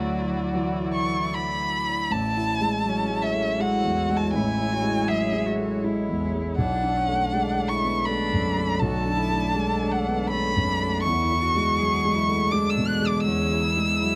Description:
neoclassical piano and strings; 81 BPM; 3/4; rubato; A major; A4 = 439 Hz
warm violin; melody; 0.0-14.2 s; F#4 to F#6; -28 LUFS; equal
rich cello; second line; 0.0-14.2 s; E3 to G#4; -36 LUFS; equal
dark grand piano; accompaniment; 0.0-14.2 s; A1 to D5; -27 LUFS; equal
evolving wavetable pad; sustained chords; 0.0-14.2 s; D3 to D5; -37 LUFS; equal; chorus, built-in reverb
little or no reverb; close, detailed microphones; -24 LUFS; mono
0.0-2.1 A section; 2.1-14.2 B section
0.0 Dadd9; 2.1 Amaj7; 6.6 Bm7; 11.0 E7

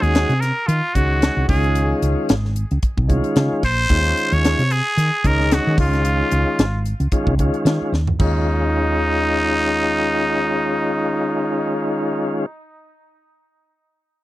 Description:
electric jazz fusion; 112 BPM; 4/4; swing 55% on 16ths; Eb dorian; A4 = 440 Hz
trumpet with straight mute; melody; 0.0-12.5 s; Eb4 to Db5; -22 LUFS; equal; tape echo
tonewheel organ; accompaniment; 0.0-12.5 s; Eb3 to Gb4; -21 LUFS; left 1 dB; slow rotary speaker
woody fretless electric bass; bass; 0.0-12.5 s; Ab1 to Eb3; -20 LUFS; equal
crisp fusion drum kit; drums; 0.0-8.3 s; crash cymbal, hi-hat, kick drum, snare drum, toms; -20 LUFS; equal
little or no reverb; dry, close 1970s-style studio recording; -16 LUFS; side -16 dB against mid
0.0-8.2 A section; 8.2-12.5 B section
drum fill 7.9
0.0 Ebm7; 1.5 Db; 3.9 Dbmaj9; 5.8 Db; 7.1 Dbadd9; 8.2 Eb9sus4

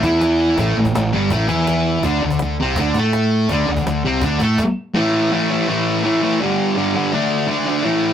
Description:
garage rock duo or trio; 165 BPM; 4/4; straight; A4 = 440 Hz
thick fuzz guitar; riff; 0.0-8.1 s; G2 to A4; -16 LUFS; equal; distortion
fuzz fingered electric bass; bass; 0.0-4.6 s; G1 to A2; -20 LUFS; equal; overdrive
cajon; drums; 0.0-4.7 s; -27 LUFS; equal
moderate small room reverb, RT60 0.5 s; rough rehearsal-room recording; -15 LUFS; side -9 dB against mid
0.0-5.0 A section; 5.0-8.1 B section
stop 4.6-5.0
0.0 A5; 2.0 D5; 5.0 A5; 6.4 G5; 7.1 D5

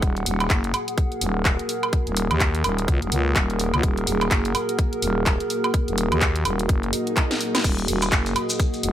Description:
bass house; 126 BPM; 4/4; swing 59% on 16ths; Eb minor; A4 = 441 Hz
dark analog pad; sustained chords; 0.0-8.9 s; Bb3 to Gb5; -30 LUFS; left 2 dB; chorus, sidechain pumping
growling FM bass; bass; 0.0-8.9 s; Eb1 to Eb2; -24 LUFS; equal; tube saturation, sidechain pumping
electronic kick drum; drums; 0.0-8.7 s; -22 LUFS; equal
garage drum kit; drums; 0.0-8.9 s; crash cymbal, handclaps, hi-hat, snare drum, woodblock; -25 LUFS; right 1 dB
warbly tape-like pad; texture; 0.0-8.9 s; Ab4 to Gb5; -29 LUFS; right 3 dB; chorus, built-in reverb, sidechain pumping
swell; sound effects; 6.9-7.6 s; -36 LUFS; right 5 dB
maracas; percussion; 7.6-8.8 s; -30 LUFS; left 1 dB
little or no reverb; -20 LUFS; side -11 dB against mid
0.0-8.9 A section
swell 6.9-7.6; drum fill 7.3-7.6
0.0 Ebm

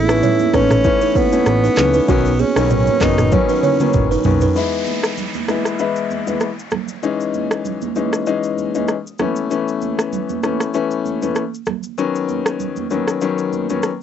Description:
afrobeats; 97 BPM; 4/4; swing 55% on 16ths; E major; A4 = 440 Hz
warm tenor saxophone; melody; 0.0-4.3 s; B3 to E4; -19 LUFS; right 1 dB; cassette tape, analog delay
buzzing kalimba; riff; 0.0-4.5 s; B3 to C#5; -21 LUFS; right 11 dB; analog delay
fat analog bass; bass; 0.0-4.5 s; F#1 to C#2; -19 LUFS; equal
clear baby grand piano; accompaniment; 0.1-13.9 s; D#3 to E4; -19 LUFS; left 7 dB
afro-pop drum kit; drums; 0.1-14.0 s; handclaps, kick drum, rim click, shaker, toms; -21 LUFS; right 1 dB; overdrive, cassette tape
congas; percussion; 0.2-13.8 s; -26 LUFS; right 16 dB
downlifter; sound effects; 4.6-9.5 s; -32 LUFS; right 1 dB
light reverb; home recording on cassette, nothing above 7.9 kHz; -16 LUFS; side -9 dB against mid
0.0-4.6 A section; 4.6-14.0 B section
drum fill 3.3-4.6
0.0 Aadd9; 2.1 Badd9; 4.6 E; 7.0 C#madd9/E; 9.2 Aadd9; 12.0 Badd9

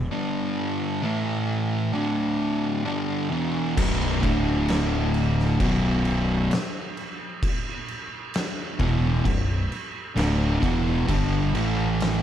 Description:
stoner and doom metal; 66 BPM; 4/4; straight; B minor; A4 = 439 Hz
fuzz fingered electric bass; bass; 0.0-12.2 s; B0 to A1; -27 LUFS; equal; overdrive
fuzz guitar; riff; 0.1-12.2 s; B1 to A3; -23 LUFS; equal; distortion
oversized low-tuned drum kit; drums; 3.8-12.2 s; crash cymbal, kick drum, snare drum; -28 LUFS; equal
small room ambience; dark, warm production; -22 LUFS; side -10 dB against mid
0.0-3.8 A section; 3.8-12.2 B section
0.1 G5; 1.0 A5; 1.9 D5; 2.9 E5; 3.8 B5; 4.2 D5; 5.6 Bm; 11.1 G5; 11.5 A5

